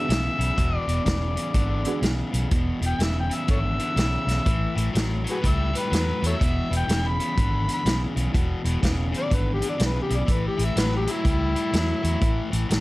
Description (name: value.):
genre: electric blues shuffle.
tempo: 124 BPM.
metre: 4/4.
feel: swing 64% on 8ths.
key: unclear.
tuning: A4 = 440 Hz.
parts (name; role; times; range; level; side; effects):
overdriven harmonica; melody; 0.0-12.5 s; E4 to B5; -28 LUFS; left 1 dB; slapback echo, plate reverb.
honky-tonk upright piano; accompaniment; 0.0-2.0 s; B3 to G#4; -32 LUFS; right 5 dB; plate reverb.
crunchy overdriven guitar; riff; 0.0-12.8 s; E2 to G3; -29 LUFS; left 2 dB; none.
vintage muted fingered electric bass; bass; 0.1-12.8 s; E1 to E2; -25 LUFS; equal; none.
vintage drum kit; drums; 0.1-12.8 s; hi-hat, kick drum, snare drum; -26 LUFS; equal; none.
room: light reverb.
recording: none.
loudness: -21 LUFS.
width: side -19 dB against mid.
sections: 0.0-2.5 A section; 2.5-12.8 B section.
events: harmonica solo 2.5-12.8.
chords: 0.0 E7; 4.5 A7; 6.4 E7; 10.3 A7(no3).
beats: 0.10 | 0.58 1.07 1.55 2.04 | 2.52 3.01 3.49 3.98 | 4.46 4.95 5.43 5.92 | 6.40 6.89 7.37 7.86 | 8.34 8.83 9.31 9.79 | 10.28 10.76 11.25 11.73 | 12.21 12.70.